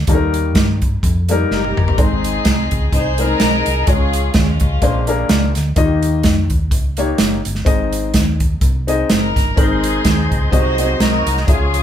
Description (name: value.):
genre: uptempo gospel.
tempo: 126 BPM.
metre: 4/4.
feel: swing 55% on 8ths.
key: Ab major.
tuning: A4 = 440 Hz.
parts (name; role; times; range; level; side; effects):
hollow-body short-scale fingered electric bass; bass; 0.0-11.8 s; Gb1 to G2; -19 LUFS; equal; none.
warm upright piano; accompaniment; 0.1-11.8 s; Ab2 to F5; -20 LUFS; left 3 dB; none.
natural country drum kit; drums; 0.1-11.8 s; hi-hat, kick drum, snare drum, toms; -16 LUFS; right 1 dB; none.
warm chamber string section; melody; 1.5-5.3, 9.1-11.8 s; Ab3 to C5; -20 LUFS; left 2 dB; none.
percussive tonewheel organ; sustained chords; 9.6-11.8 s; Eb3 to C5; -26 LUFS; right 2 dB; fast rotary speaker, overdrive, chorus vibrato.
room: moderate studio reverb, RT60 0.6 s.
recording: band playing live in one room.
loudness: -13 LUFS.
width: side -10 dB against mid.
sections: 0.0-11.8 A section.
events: drum fill 1.5-2.0.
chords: 0.1 Eb; 2.0 Ab; 3.9 Db; 4.8 Bb9; 5.8 Eb; 7.7 Ab; 10.5 Ab7/C.